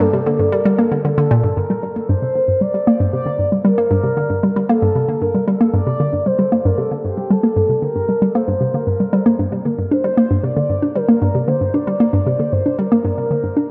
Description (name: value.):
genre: ambient.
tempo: 115 BPM.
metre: 4/4.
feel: straight.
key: G minor.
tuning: A4 = 440 Hz.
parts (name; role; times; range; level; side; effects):
mellow horn-like synth lead; melody; 0.0-13.7 s; G4 to D5; -22 LUFS; equal; phaser, subtle chorus, analog delay.
hollow square pluck; riff; 0.0-13.7 s; G2 to D4; -19 LUFS; equal; chorus, analog delay.
room: wet plate reverb, RT60 3.1 s.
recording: echo-heavy mix.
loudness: -17 LUFS.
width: mono.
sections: 0.0-1.6 A section; 1.6-13.7 B section.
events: none.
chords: 0.0 Gm.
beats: 0.00 0.52 1.04 | 1.56 2.09 2.61 3.13 | 3.65 4.17 4.70 5.22 | 5.74 6.26 6.78 7.30 | 7.83 8.35 8.87 9.39 | 9.91 10.43 10.96 11.48 | 12.00 12.52 13.04 13.56.